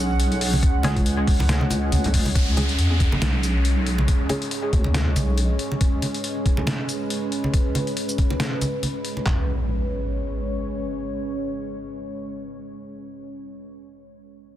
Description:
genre	deep dubstep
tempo	139 BPM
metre	4/4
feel	swing 56% on 16ths, half-time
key	unclear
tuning	A4 = 440 Hz
part	deep dark ambient pad	sustained chords	0.0-12.3 s	G#3 to F#5	-28 LUFS	equal	chorus, built-in reverb
part	deep soft wobble bass	bass	0.0-5.6 s	B1 to E2	-21 LUFS	equal	chorus
part	trip hop sampler-style drum kit	drums	0.2-9.1 s	hi-hat, shaker, snare drum	-28 LUFS	left 1 dB	none
part	congas	percussion	0.5-9.2 s	none	-28 LUFS	right 1 dB	none
part	trip hop sampler-style drum kit	drums	0.6-9.4 s	handclaps, kick drum	-21 LUFS	equal	none
part	filtered dub chord stab	stabs	0.8-4.4 s	G#3 to G#4	-34 LUFS	left 1 dB	chorus, dub echo
part	downlifter and impact	sound effects	2.4-5.8, 9.3-12.4 s	none	-30 LUFS	equal	none
room	little or no reverb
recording	dense, heavily limited modern master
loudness	-20 LUFS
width	side -12 dB against mid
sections	0.0-2.4 A section; 2.4-9.3 B section; 9.3-12.7 C section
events	drop 0.0-2.4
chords	0.0 C#5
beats	0.20 | 0.63 1.06 1.49 1.92 | 2.35 2.79 3.22 3.65 | 4.08 4.51 4.95 5.38 | 5.81 6.24 6.67 7.10 | 7.54 7.97 8.40 8.83 | 9.26 9.69 10.12 10.56 | 10.99 11.42 11.85 12.28

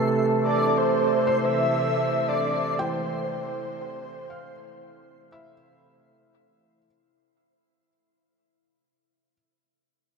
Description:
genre	ambient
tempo	59 BPM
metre	4/4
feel	straight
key	unclear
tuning	A4 = 440 Hz
part	warm analog pad	sustained chords	0.0-6.9 s	C3 to A4	-25 LUFS	right 2 dB	chorus
part	backwards swelling texture	texture	0.0-6.9 s	C7	-46 LUFS	right 1 dB	built-in reverb
part	breathy flute-like synth lead	melody	0.4-5.8 s	C5 to E5	-26 LUFS	equal	ensemble chorus
part	felt-muted upright piano	arpeggios	1.3-9.3 s	E3 to G5	-33 LUFS	left 1 dB	ping-pong delay
room	wet huge ambient reverb, RT60 8.4 s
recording	none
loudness	-22 LUFS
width	side -4 dB against mid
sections	0.0-6.9 A section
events	fade-out on synth texture 0.0-6.9; fade-out 0.0-6.9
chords	0.0 Fmaj7/C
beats	0.75 1.77 | 2.79 3.80 4.82 5.84

